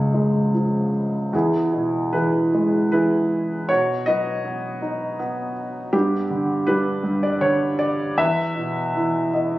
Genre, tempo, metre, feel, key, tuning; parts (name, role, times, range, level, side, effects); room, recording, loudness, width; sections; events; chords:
classical, lyrical solo piano; 79 BPM; 3/4; uneven beats, rubato; E major; A4 = 440 Hz
warm grand piano; solo; 0.0-9.6 s; C#2 to E5; -19 LUFS; equal
light reverb; recorded on a phone in the room, studio reverb; -19 LUFS; side -16 dB against mid
0.0-9.6 A section
grand piano fill 8.9-9.6
0.0 C#; 1.3 E; 3.7 B; 5.9 G; 8.2 E5